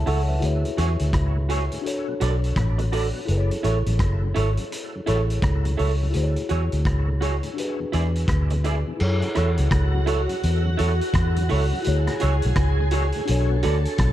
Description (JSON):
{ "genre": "lovers rock reggae", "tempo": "84 BPM", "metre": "4/4", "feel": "swing 62% on 16ths", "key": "F# minor", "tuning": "A4 = 441 Hz", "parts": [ { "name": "mellow tine electric piano", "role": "accompaniment", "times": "0.0-14.1 s", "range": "D4 to A5", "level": "-30 LUFS", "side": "left 4 dB", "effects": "medium stereo tremolo" }, { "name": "vintage muted fingered electric bass", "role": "bass", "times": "0.0-14.1 s", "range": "F#1 to F#2", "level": "-21 LUFS", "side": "equal", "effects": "none" }, { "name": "tonewheel organ", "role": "accompaniment", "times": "0.1-13.8 s", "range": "D2 to E4", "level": "-35 LUFS", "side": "left 1 dB", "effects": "chorus vibrato, slow rotary speaker, tape echo" }, { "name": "electric guitar through a small old amp", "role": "stabs", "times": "0.1-13.8 s", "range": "E4 to D5", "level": "-30 LUFS", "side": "right 6 dB", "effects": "none" }, { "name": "vintage drum kit", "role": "drums", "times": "0.1-14.1 s", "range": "crash cymbal, hi-hat, kick drum, rim click", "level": "-28 LUFS", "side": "equal", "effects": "none" }, { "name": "soft string machine", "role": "second line", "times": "9.3-14.1 s", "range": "F#4 to A5", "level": "-29 LUFS", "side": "right 1 dB", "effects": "ensemble chorus, tape echo" } ], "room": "studio ambience", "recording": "dark, warm production", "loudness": "-20 LUFS", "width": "side -13 dB against mid", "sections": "0.0-9.0 A section; 9.0-14.1 B section", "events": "none", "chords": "0.4 Dmaj9#11; 1.8 Bm7; 3.3 F#m7; 6.1 Dmaj9#11; 7.6 E7; 9.0 F#m7; 11.9 Dmaj9#11; 13.3 Bm7" }